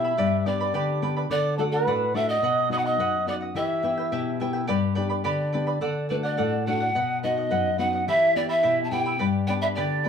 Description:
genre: andean folk, Andean ensemble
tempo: 106 BPM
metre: 2/4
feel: straight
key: unclear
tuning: A4 = 440 Hz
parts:
  - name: mellow polished pan flute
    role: melody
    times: 0.0-10.1 s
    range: A4 to A5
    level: -25 LUFS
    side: equal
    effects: none
  - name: large quena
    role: second line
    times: 0.0-4.4, 8.1-10.1 s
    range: D5 to E6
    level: -29 LUFS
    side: right 4 dB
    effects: none
  - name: charango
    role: accompaniment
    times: 0.0-10.1 s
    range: E4 to B5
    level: -30 LUFS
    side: right 2 dB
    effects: none
  - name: nylon-string guitar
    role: accompaniment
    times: 0.0-10.1 s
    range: F#2 to G4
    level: -27 LUFS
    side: left 3 dB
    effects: none
room: wet small room reverb, RT60 0.5 s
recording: heard from further back in the room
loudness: -22 LUFS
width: side -7 dB against mid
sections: 0.0-4.7 A section; 4.7-10.1 A section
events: none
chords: 0.2 G; 1.3 D; 2.4 B; 3.6 Em; 4.7 G; 5.8 D; 6.9 B; 8.1 Em; 9.2 G

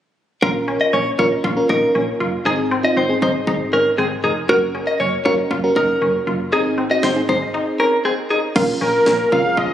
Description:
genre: synth-pop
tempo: 118 BPM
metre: 4/4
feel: straight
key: Bb minor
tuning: A4 = 442 Hz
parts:
  - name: direct-recorded clean electric guitar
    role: second line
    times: 0.4-8.4 s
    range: Ab4 to Eb5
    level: -19 LUFS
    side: left 1 dB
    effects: analog delay
  - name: FM electric piano with tremolo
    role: accompaniment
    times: 0.4-9.7 s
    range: C4 to Bb4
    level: -21 LUFS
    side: right 1 dB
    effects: none
  - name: resonant blip pluck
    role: arpeggios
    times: 0.4-9.7 s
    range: C4 to Gb4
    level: -24 LUFS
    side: left 2 dB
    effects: chorus, analog delay
  - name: solid FM bass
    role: bass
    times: 0.4-9.6 s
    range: F1 to C2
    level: -26 LUFS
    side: right 1 dB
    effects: none
  - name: house drum kit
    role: drums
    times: 0.4-9.7 s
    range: crash cymbal, kick drum, snare drum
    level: -26 LUFS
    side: equal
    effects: none
  - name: phased analog pad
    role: sustained chords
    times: 8.6-9.7 s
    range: F3 to F4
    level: -26 LUFS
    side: right 1 dB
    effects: phaser, chorus
  - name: octave-doubled lead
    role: melody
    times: 8.8-9.7 s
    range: Bb4 to F5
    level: -16 LUFS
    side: equal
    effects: chorus
room: moderate lush hall reverb, RT60 2.6 s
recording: recorded on a phone in the room, club reverb, compression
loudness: -15 LUFS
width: side -10 dB against mid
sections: 0.4-8.6 A section; 8.6-9.7 B section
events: none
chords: 0.4 Bbm; 2.5 Ab; 4.5 Gb; 6.5 Ab; 8.6 Bbm

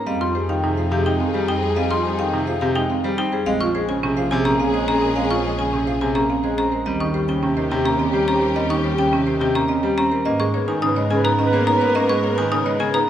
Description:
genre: classical, minimalist pattern music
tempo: 106 BPM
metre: 3/4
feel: straight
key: Eb mixolydian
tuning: A4 = 440 Hz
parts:
  - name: vibraphone with soft mallets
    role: melody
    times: 0.0-13.0 s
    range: G4 to Ab5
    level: -26 LUFS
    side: left 6 dB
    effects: none
  - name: clear grand piano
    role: accompaniment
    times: 0.0-13.1 s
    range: C3 to Db4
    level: -26 LUFS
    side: equal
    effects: none
  - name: buzzing marimba with medium hard mallets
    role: arpeggios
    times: 0.0-13.1 s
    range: C4 to Db5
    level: -24 LUFS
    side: right 4 dB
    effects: none
  - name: warm French horn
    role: second line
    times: 0.1-13.1 s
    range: G4 to Cb5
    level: -26 LUFS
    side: right 2 dB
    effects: none
  - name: warm studio string section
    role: sustained chords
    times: 0.1-13.1 s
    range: Cb4 to Bb4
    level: -30 LUFS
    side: left 2 dB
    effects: none
  - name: xylophone with rubber mallets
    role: arpeggios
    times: 0.1-13.1 s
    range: Eb5 to Eb6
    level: -25 LUFS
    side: left 2 dB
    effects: none
  - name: clear symphonic double bass section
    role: bass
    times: 0.1-13.1 s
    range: Bb1 to Ab2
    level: -26 LUFS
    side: right 1 dB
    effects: none
room: wet recital hall reverb, RT60 1.5 s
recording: none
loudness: -18 LUFS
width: side -10 dB against mid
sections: 0.0-13.1 A section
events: none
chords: 0.1 Fm7; 3.5 Bbm7; 6.9 Eb7; 10.3 Abmadd9

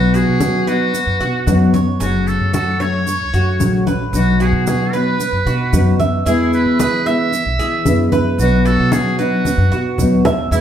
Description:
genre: latin, Cuban son and guajira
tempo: 113 BPM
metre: 4/4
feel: straight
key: unclear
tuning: A4 = 441 Hz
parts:
  - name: trumpet with metal mute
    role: melody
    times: 0.0-10.6 s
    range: E4 to E5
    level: -21 LUFS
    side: equal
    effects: slapback echo
  - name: nylon-string guitar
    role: accompaniment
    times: 0.0-10.6 s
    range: B2 to F#4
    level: -17 LUFS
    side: left 2 dB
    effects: none
  - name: Cuban tres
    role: arpeggios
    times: 0.0-10.6 s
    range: C#4 to E5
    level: -22 LUFS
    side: right 5 dB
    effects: none
  - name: upright bass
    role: bass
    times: 0.0-10.6 s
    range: F#1 to E3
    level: -19 LUFS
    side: equal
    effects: none
  - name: congas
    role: percussion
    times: 0.1-10.6 s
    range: none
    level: -22 LUFS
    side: equal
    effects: none
  - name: maracas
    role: percussion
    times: 0.1-10.6 s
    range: none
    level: -33 LUFS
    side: right 6 dB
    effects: none
room: wet studio reverb, RT60 1.0 s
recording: heard from further back in the room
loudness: -13 LUFS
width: side -9 dB against mid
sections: 0.0-10.5 A section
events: drum fill 9.5-10.5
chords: 0.0 B; 2.0 F#m; 4.1 B; 6.3 E; 8.4 B

